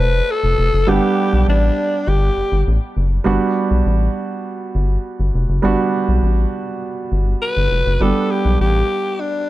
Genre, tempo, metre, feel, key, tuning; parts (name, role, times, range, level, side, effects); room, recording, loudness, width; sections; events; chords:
1980s-style pop; 101 BPM; 4/4; straight; G major; A4 = 440 Hz
breathy alto saxophone; melody; 0.0-2.7, 7.4-9.5 s; D4 to B4; -20 LUFS; left 2 dB
warm grand piano; accompaniment; 0.0-9.5 s; G3 to F#5; -20 LUFS; right 4 dB
rubbery square bass; bass; 0.0-8.8 s; F1 to B1; -16 LUFS; equal
light reverb, studio reverb; dark, warm production; -15 LUFS; side -16 dB against mid
0.0-3.3 A section; 3.3-8.0 B section; 8.0-9.5 C section
0.0 F6; 0.9 Gmaj7; 8.0 G